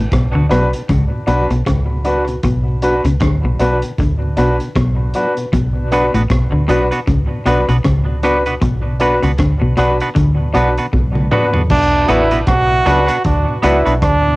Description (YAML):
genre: dub reggae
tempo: 78 BPM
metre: 4/4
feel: swing 58% on 16ths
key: B minor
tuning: A4 = 440 Hz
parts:
  - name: mellow tonewheel organ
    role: accompaniment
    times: 0.0-14.3 s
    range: B2 to D4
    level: -26 LUFS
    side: equal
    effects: none
  - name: electric guitar at the edge of break-up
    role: riff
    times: 0.0-11.2 s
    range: A2 to D3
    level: -19 LUFS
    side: left 1 dB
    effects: cassette tape, tape echo
  - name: deep dub fingered electric bass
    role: bass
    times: 0.0-14.4 s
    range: A1 to D2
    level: -17 LUFS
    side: equal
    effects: none
  - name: crunchy breakbeat drum kit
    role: drums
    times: 0.1-14.2 s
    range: crash cymbal, hi-hat, kick drum, rim click, toms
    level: -20 LUFS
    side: equal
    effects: none
  - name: clear baby grand piano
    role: stabs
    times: 0.5-13.8 s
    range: D4 to B4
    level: -19 LUFS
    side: left 1 dB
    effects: cassette tape, tape echo
  - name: semi-hollow electric guitar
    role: accompaniment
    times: 5.9-13.9 s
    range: B3 to B4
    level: -22 LUFS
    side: right 2 dB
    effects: cassette tape, tape echo
  - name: brilliant trombone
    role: second line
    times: 11.7-14.4 s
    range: D4 to F#4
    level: -15 LUFS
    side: right 2 dB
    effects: cassette tape, tape echo
room: moderate small room reverb, RT60 0.5 s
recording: home recording on cassette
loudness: -12 LUFS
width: side -22 dB against mid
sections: 0.0-11.7 A section; 11.7-14.4 B section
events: break 0.0-5.5; drum fill 10.9-11.7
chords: 0.0 Bm